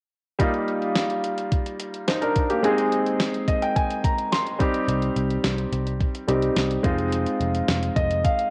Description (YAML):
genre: 1980s-style pop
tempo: 107 BPM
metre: 4/4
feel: straight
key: Eb major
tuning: A4 = 438 Hz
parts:
  - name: clear baby grand piano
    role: accompaniment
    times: 0.4-8.5 s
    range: G3 to C6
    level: -26 LUFS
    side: equal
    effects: cassette tape
  - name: clean 12-bit digital drum machine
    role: drums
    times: 0.4-8.5 s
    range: hi-hat, kick drum, snare drum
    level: -28 LUFS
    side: equal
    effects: cassette tape
  - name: vintage muted picked electric bass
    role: bass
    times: 4.9-8.3 s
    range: F1 to C2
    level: -28 LUFS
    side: equal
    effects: none
room: moderate spring reverb, RT60 1.6 s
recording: home recording on cassette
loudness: -24 LUFS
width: mono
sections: 0.4-8.5 A section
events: grand piano fill 3.2-4.9, 7.7-8.5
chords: 0.4 Ebadd9; 2.6 Ab; 4.6 Cm; 6.8 Fm7